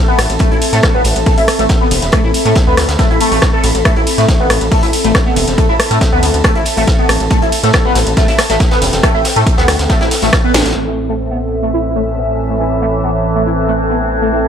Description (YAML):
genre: driving peak-time techno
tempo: 139 BPM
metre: 4/4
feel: straight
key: A minor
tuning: A4 = 441 Hz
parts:
  - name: airy breathy pad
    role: texture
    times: 0.0-14.5 s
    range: C4 to B5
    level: -18 LUFS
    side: equal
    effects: chorus, sidechain pumping
  - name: overdriven synth lead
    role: riff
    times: 0.1-14.4 s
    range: A3 to A4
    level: -17 LUFS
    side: equal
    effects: phaser, ensemble chorus, sidechain pumping, analog delay
  - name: gritty driven synth bass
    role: bass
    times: 0.2-14.5 s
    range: E1 to A2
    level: -18 LUFS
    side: equal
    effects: sidechain pumping
  - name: techno drum kit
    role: drums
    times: 0.2-10.7 s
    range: hi-hat, ride cymbal, rim click, snare drum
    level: -17 LUFS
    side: equal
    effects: sidechain pumping on hats, low-pass filter on hats, sidechain pumping on cymbals, low-pass filter on cymbals, low-pass filter on snare, low-pass filter on room
  - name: vintage drum kit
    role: drums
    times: 0.2-10.8 s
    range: hi-hat, snare drum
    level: -24 LUFS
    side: equal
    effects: sidechain pumping on hats, high-pass filter on hats, high-pass filter on snare, high-pass filter on room, analog delay
  - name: electronic kick drum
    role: drums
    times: 0.4-10.4 s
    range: none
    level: -13 LUFS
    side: equal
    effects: none
  - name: overtone-sweeping drone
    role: drone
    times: 11.7-14.5 s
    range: A2 to E3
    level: -19 LUFS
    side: equal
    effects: chorus, built-in reverb, sidechain pumping
room: light reverb, digital ambience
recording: echo-heavy mix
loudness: -10 LUFS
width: side -8 dB against mid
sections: 0.0-10.8 A section; 10.8-14.5 B section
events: drop 0.0-10.8; drum fill 10.5; band accent 10.5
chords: 0.0 Am